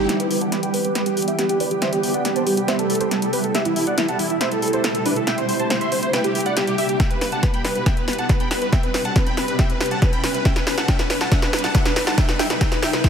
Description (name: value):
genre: uplifting trance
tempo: 139 BPM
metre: 4/4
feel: straight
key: E minor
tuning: A4 = 440 Hz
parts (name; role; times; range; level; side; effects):
- dense compressed supersaw; melody; 0.0-13.1 s; D4 to C6; -23 LUFS; equal; sidechain pumping, low-pass filter, tape echo
- riser and reverse cymbal; sound effects; 0.0-13.1 s; none; -30 LUFS; left 1 dB; none
- punchy analog drum machine; drums; 0.1-13.1 s; hi-hat, snare drum; -24 LUFS; equal; overdrive, high-pass filter on snare, high-pass filter on hats
- electronic kick drum; drums; 7.0-13.1 s; none; -19 LUFS; equal; overdrive
room: light reverb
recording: none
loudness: -18 LUFS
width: side -7 dB against mid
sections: 0.1-13.1 A section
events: build-up 0.1-13.1; drum fill 0.1-13.1; riser 0.1-13.1; filter sweep on supersaw synth 0.1-13.1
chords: 0.1 Em; 1.0 G; 1.8 C; 2.7 Amadd9; 3.5 Em; 4.4 Dadd9; 5.3 C; 6.1 G; 7.0 Em; 7.9 G; 8.7 C; 9.6 Amadd9; 10.5 Em; 11.3 Dadd9; 12.2 C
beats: | 0.09 0.53 0.96 1.39 | 1.82 2.25 2.68 3.11 | 3.55 3.98 4.41 4.84 | 5.27 5.70 6.14 6.57 | 7.00 7.43 7.86 8.29 | 8.73 9.16 9.59 10.02 | 10.45 10.88 11.32 11.75 | 12.18 12.61 13.04